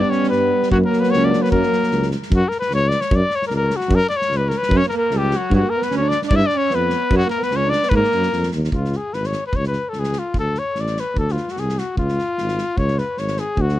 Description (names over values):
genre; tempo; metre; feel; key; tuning
balkan folk, Balkan brass band; 149 BPM; 2/4; swing 55% on 16ths; C# phrygian dominant from 8.7 s; A4 = 440 Hz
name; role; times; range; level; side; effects
warm trumpet; melody; 0.0-13.8 s; E#4 to E5; -21 LUFS; left 3 dB; tape echo
warm alto saxophone; second line; 0.0-2.1, 4.8-8.5 s; F#3 to E4; -23 LUFS; right 7 dB; none
warm euphonium; accompaniment; 0.0-2.2 s; A#3 to B3; -21 LUFS; left 6 dB; none
warm euphonium; accompaniment; 0.0-2.2 s; F#3 to G3; -23 LUFS; right 7 dB; none
loose indie drum kit; percussion; 0.1-13.7 s; kick drum, snare drum; -25 LUFS; right 1 dB; none
warm tuba; bass; 0.3-13.8 s; G#1 to G#2; -21 LUFS; equal; none
room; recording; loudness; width
little or no reverb; none; -17 LUFS; side -14 dB against mid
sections
0.0-2.3 A section; 2.3-8.7 A section; 8.7-13.8 B section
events
none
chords
0.0 G; 0.7 F#; 2.3 F#5; 5.5 G; 7.1 F#5; 7.9 G#5; 8.7 C#5; 10.3 D5; 12.0 C#